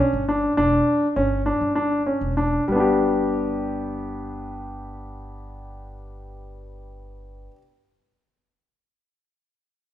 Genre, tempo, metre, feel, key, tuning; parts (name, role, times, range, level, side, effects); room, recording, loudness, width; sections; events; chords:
contemporary instrumental, chamber music in an uneven meter; 191-208 BPM (eighths); 7/8; straight; G lydian; A4 = 437 Hz
clear baby grand piano; arpeggios; 0.0-7.6 s; G3 to G4; -21 LUFS; left 1 dB
upright bass; bass; 0.1-7.5 s; E1 to G1; -31 LUFS; equal
wet recital hall reverb, RT60 1.4 s; minimal, uncompressed stereo recording; -20 LUFS; side -12 dB against mid
0.0-2.7 A section; 2.7-7.1 B section
slowing down 0.0-2.7
0.0 G5; 0.6 Em7; 2.7 G